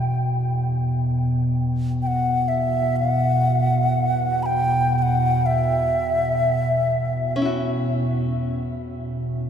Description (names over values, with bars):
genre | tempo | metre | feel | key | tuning
world meditative, free-time meditation music | free time | none | none | E kumoi | A4 = 440 Hz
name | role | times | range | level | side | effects
xiao | melody | 0.0-7.4 s | E5 to B5 | -23 LUFS | left 1 dB | none
warbly tape-like pad | drone | 0.0-9.5 s | E2 to B2 | -22 LUFS | equal | chorus, built-in reverb
open-back banjo | texture | 0.0-9.5 s | C#4 to F#4 | -28 LUFS | left 1 dB | none
room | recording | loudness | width
wet cathedral reverb, RT60 7.0 s | in a vast, echoing space | -19 LUFS | side -8 dB against mid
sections
0.0-9.5 A section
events
none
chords
none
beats
free time